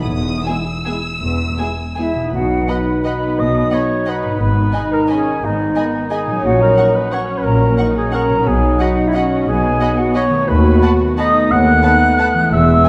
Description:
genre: classical, orchestral ballroom waltz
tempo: 153-192 BPM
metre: 3/4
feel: rubato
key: B major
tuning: A4 = 438 Hz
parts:
  - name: muted symphonic violin section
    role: melody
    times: 0.0-12.9 s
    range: B5 to E6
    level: -33 LUFS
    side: equal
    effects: none
  - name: concert harp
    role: arpeggios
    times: 0.0-12.9 s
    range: G#2 to C#5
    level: -24 LUFS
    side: equal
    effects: none
  - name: muted symphonic cello section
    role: bass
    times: 0.0-12.8 s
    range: D#2 to B2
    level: -24 LUFS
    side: equal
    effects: none
  - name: muted symphonic double bass section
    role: bass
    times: 0.0-12.8 s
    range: E1 to D#2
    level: -23 LUFS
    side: equal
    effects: none
  - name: muted symphonic violin section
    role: second line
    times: 0.5-12.9 s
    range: G#4 to A5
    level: -30 LUFS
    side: equal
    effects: none
  - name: muted symphonic viola section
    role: accompaniment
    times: 0.5-12.9 s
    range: G#3 to F#4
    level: -25 LUFS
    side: equal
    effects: none
  - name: mellow French horn section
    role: sustained chords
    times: 0.5-12.9 s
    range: D#3 to E4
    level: -24 LUFS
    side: equal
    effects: none
  - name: concert flute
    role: second line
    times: 2.0-12.9 s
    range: D#5 to F#6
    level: -24 LUFS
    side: equal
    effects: none
  - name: warm clarinet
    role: second line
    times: 2.0-12.9 s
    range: D#4 to F#5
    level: -22 LUFS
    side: equal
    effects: none
room: wet scoring stage reverb, RT60 1.6 s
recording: dark, warm production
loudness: -16 LUFS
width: mono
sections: 0.0-2.3 A section; 2.3-12.9 B section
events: none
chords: 0.1 E; 2.3 B; 4.4 G#m; 6.4 F#/A#; 8.5 B; 10.5 B7/D#

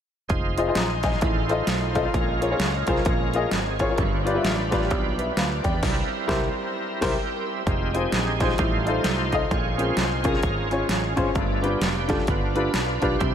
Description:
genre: uptempo gospel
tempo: 130 BPM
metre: 4/4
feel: swing 60% on 8ths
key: F minor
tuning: A4 = 439 Hz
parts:
  - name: bright tonewheel organ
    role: sustained chords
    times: 0.3-13.3 s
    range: G3 to G5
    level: -28 LUFS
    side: right 2 dB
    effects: slow rotary speaker, overdrive, chorus vibrato
  - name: fingered electric bass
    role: bass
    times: 0.3-13.3 s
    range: F1 to E2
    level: -28 LUFS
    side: equal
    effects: none
  - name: dubstep drum kit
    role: drums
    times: 0.3-13.3 s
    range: crash cymbal, hi-hat, kick drum, snare drum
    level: -26 LUFS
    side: equal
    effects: overdrive
  - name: clear upright piano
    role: accompaniment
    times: 0.6-13.3 s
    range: G2 to Eb6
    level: -26 LUFS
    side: left 2 dB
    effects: none
room: moderate huge ambient reverb, RT60 8.5 s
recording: dreamy mix soaked in reverb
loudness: -21 LUFS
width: side -9 dB against mid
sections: 0.3-7.7 A section; 7.7-13.3 B section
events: band accent 5.8-7.7; tonewheel organ solo 7.7-13.3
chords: 0.3 Fm7; 1.2 F7/A; 2.1 Bbm7; 4.0 G7; 5.8 C7; 7.7 Fm7; 8.6 F7/A; 9.5 Bbm7; 11.4 G7

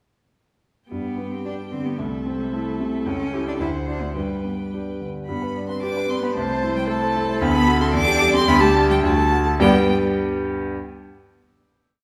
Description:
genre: quick classical-period movement for piano quartet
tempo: 110 BPM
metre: 2/4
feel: uneven beats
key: G major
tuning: A4 = 439 Hz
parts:
  - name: rich violin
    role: melody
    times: 0.9-9.9 s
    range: E5 to D6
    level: -26 LUFS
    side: equal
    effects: none
  - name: rich cello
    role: second line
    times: 0.9-9.9 s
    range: G3 to E4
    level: -28 LUFS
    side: equal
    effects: none
  - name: clear concert grand piano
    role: accompaniment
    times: 0.9-10.8 s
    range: C2 to G5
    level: -25 LUFS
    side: equal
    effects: none
  - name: rich viola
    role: accompaniment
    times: 0.9-9.9 s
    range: B3 to C5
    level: -30 LUFS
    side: equal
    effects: none
room: wet stone room reverb, RT60 1.4 s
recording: heard from further back in the room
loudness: -21 LUFS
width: mono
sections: 0.9-5.3 A section; 5.3-9.6 A section; 9.6-10.7 final chord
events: none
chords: 0.9 G; 2.0 Am/C; 3.1 A7/C#; 3.6 D7; 4.2 G; 6.4 Am/C; 7.4 D; 7.9 C69/E; 8.5 G5/D; 9.0 D; 9.6 G

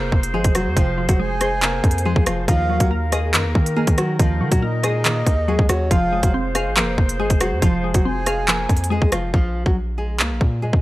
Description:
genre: hip hop, drill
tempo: 140 BPM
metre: 4/4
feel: half-time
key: F phrygian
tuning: A4 = 440 Hz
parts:
  - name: nylon-string guitar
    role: melody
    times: 0.0-10.8 s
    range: F3 to Bb4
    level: -25 LUFS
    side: equal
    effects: none
  - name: glassy wavetable pluck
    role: accompaniment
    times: 0.0-9.3 s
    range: C3 to F5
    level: -26 LUFS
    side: equal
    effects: chorus
  - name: mellow woodwind section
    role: sustained chords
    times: 0.0-9.3 s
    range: Eb3 to C5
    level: -29 LUFS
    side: equal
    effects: stereo widening
  - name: long sustained 808-style bass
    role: bass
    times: 0.0-10.8 s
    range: F1 to Eb3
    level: -23 LUFS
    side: equal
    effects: none
  - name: drill drum kit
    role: drums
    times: 0.1-10.8 s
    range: handclaps, hi-hat, kick drum, rim click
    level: -18 LUFS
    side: equal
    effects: none
  - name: breathy flute-like synth lead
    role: second line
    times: 1.2-8.9 s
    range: Db5 to Ab5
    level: -26 LUFS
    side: right 1 dB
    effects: chorus, analog delay
room: little or no reverb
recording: dry, gritty hardware recording, transformer saturation, cassette tape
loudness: -16 LUFS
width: side -17 dB against mid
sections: 0.0-9.3 A section; 9.3-10.8 B section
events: hi-hats muted 9.3-10.8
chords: 0.0 Fm; 2.5 Ebm; 5.9 Fm; 9.3 Bb5

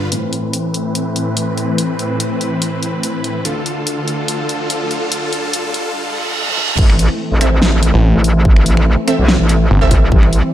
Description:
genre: heavy wobble dubstep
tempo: 144 BPM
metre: 4/4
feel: swing 54% on 16ths, half-time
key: A minor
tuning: A4 = 440 Hz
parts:
  - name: supersaw chords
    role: sustained chords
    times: 0.0-10.5 s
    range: D2 to B4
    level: -18 LUFS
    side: left 1 dB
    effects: sidechain pumping, low-pass filter
  - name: big-room dance drum kit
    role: drums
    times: 0.1-10.4 s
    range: crash cymbal, finger snaps, hi-hat, snare drum, toms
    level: -20 LUFS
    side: equal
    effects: none
  - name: riser and reverse cymbal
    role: sound effects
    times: 2.3-6.8 s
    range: none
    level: -25 LUFS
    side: right 4 dB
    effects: none
  - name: metallic wobble bass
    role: bass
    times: 6.8-10.4 s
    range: A1 to B1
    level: -13 LUFS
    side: equal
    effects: chorus, overdrive
  - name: electronic kick drum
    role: drums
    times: 6.8-10.2 s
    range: none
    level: -12 LUFS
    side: equal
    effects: none
  - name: orchestra-hit-like synth stab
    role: stabs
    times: 7.4-9.9 s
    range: C4 to E5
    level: -21 LUFS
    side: right 3 dB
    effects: built-in reverb, analog delay
  - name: snarling distorted saw bass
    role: bass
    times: 7.9-9.9 s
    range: G1 to A1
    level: -12 LUFS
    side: equal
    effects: distortion, overdrive
room: moderate lush hall reverb, RT60 1.6 s, digital ambience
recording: dreamy mix soaked in reverb, high-pass filter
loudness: -13 LUFS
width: side -12 dB against mid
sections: 0.1-6.8 A section; 6.8-10.5 B section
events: build-up 0.1-6.8; filter sweep on supersaw synth 0.1-6.8; filter sweep 0.1-6.8; riser 2.3-6.8; reverse cymbal 6.0-6.8; drum fill 6.5-6.8; drop 6.8-10.5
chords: 0.1 Amadd9; 3.5 Dm; 6.8 Am

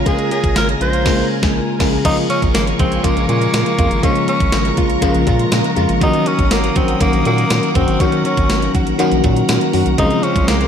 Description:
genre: 1980s-style pop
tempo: 121 BPM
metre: 4/4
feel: straight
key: unclear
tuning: A4 = 440 Hz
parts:
  - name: FM electric piano with soft pad layer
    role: accompaniment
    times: 0.0-10.7 s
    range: Db3 to Ab4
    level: -17 LUFS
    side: left 2 dB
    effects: chorus
  - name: string machine, violins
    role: sustained chords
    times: 0.0-10.7 s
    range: Bb4 to Eb6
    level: -25 LUFS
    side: equal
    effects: ensemble chorus
  - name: direct-recorded clean electric guitar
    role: riff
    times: 0.0-10.7 s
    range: Eb3 to Gb4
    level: -26 LUFS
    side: right 7 dB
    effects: ensemble chorus, ping-pong delay
  - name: round analog bass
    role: bass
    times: 0.0-10.7 s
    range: Ab1 to Bb2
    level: -20 LUFS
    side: right 1 dB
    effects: none
  - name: raspy tenor saxophone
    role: melody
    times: 0.1-10.7 s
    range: Bb3 to C5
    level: -20 LUFS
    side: equal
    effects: ping-pong delay
  - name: gated 80s digital drum machine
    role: drums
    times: 0.1-10.7 s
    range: crash cymbal, hi-hat, kick drum, snare drum, tambourine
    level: -18 LUFS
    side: right 1 dB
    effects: gated reverb, gated reverb snare
  - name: cowbell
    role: percussion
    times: 0.1-10.6 s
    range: none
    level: -32 LUFS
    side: left 5 dB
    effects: none
room: light reverb, digital ambience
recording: none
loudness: -13 LUFS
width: side -8 dB against mid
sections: 0.0-2.0 A section; 2.0-10.7 B section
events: tenor saxophone solo 0.0-2.0; band accent 1.1-2.0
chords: 0.0 Bbm7; 6.0 Gb6; 10.0 Dbmaj7

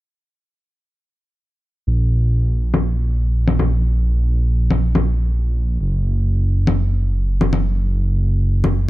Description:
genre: melodic techno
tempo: 122 BPM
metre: 4/4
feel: straight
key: unclear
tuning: A4 = 440 Hz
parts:
  - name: dark detuned saw bass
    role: bass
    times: 1.9-8.9 s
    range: Gb1 to Bb1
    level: -16 LUFS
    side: equal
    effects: none
  - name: congas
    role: drums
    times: 2.7-8.7 s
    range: none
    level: -20 LUFS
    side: left 2 dB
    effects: low-pass filter on perc, low-pass filter on room
room: little or no reverb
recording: none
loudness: -16 LUFS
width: side -17 dB against mid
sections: 1.9-8.9 A section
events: none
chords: none

